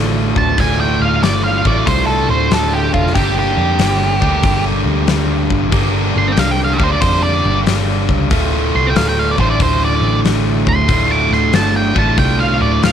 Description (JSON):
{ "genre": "blues rock power trio and southern rock", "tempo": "93 BPM", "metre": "4/4", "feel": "swing 66% on 8ths", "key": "D minor", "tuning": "A4 = 437 Hz", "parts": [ { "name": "distorted electric guitar", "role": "riff", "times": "0.0-12.9 s", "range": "D2 to G4", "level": "-17 LUFS", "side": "equal", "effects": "distortion" }, { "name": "vintage muted picked electric bass", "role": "bass", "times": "0.0-12.9 s", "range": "D1 to F2", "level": "-18 LUFS", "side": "equal", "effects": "none" }, { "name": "octave-fuzz lead guitar", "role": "melody", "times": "0.4-12.9 s", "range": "F4 to D6", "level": "-18 LUFS", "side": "right 3 dB", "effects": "distortion" }, { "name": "huge arena drum kit", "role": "drums", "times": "0.4-12.9 s", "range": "hi-hat, kick drum, snare drum", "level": "-19 LUFS", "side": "left 3 dB", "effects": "none" } ], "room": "studio reverb", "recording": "1960s-style stereo", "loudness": "-12 LUFS", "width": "side -8 dB against mid", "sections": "0.0-12.9 A section", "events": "lead electric guitar solo 0.0-12.9", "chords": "0.0 Dm; 3.2 Gm; 8.3 Dm" }